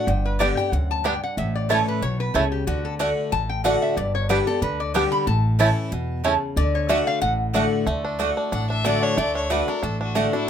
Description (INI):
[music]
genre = bluegrass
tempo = 185 BPM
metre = 4/4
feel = swing 55% on 8ths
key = D major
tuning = A4 = 438 Hz
[part]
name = lap resonator guitar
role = second line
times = 0.0-7.3 s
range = F#4 to B5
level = -26 LUFS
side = left 2 dB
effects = none
[part]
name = picked steel-string acoustic guitar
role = accompaniment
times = 0.0-10.5 s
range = F#2 to G4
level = -24 LUFS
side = left 2 dB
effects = none
[part]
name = upright bass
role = bass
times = 0.1-10.3 s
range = G1 to E2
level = -26 LUFS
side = equal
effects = none
[part]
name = bluegrass banjo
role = melody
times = 0.4-10.5 s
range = G3 to E4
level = -25 LUFS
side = right 2 dB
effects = none
[part]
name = mandolin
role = stabs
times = 0.4-10.3 s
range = A3 to A5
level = -26 LUFS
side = right 5 dB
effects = none
[part]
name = clear fiddle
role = melody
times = 8.5-10.5 s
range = D4 to F#5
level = -27 LUFS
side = left 3 dB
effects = none
[sound]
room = light reverb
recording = minimal, uncompressed stereo recording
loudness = -20 LUFS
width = side -8 dB against mid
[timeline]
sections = 0.0-7.9 A section; 7.9-10.5 B section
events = resonator guitar played with a steel bar solo 0.0-7.9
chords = 0.1 G; 1.4 A; 2.7 D; 4.0 G; 5.3 A; 6.6 D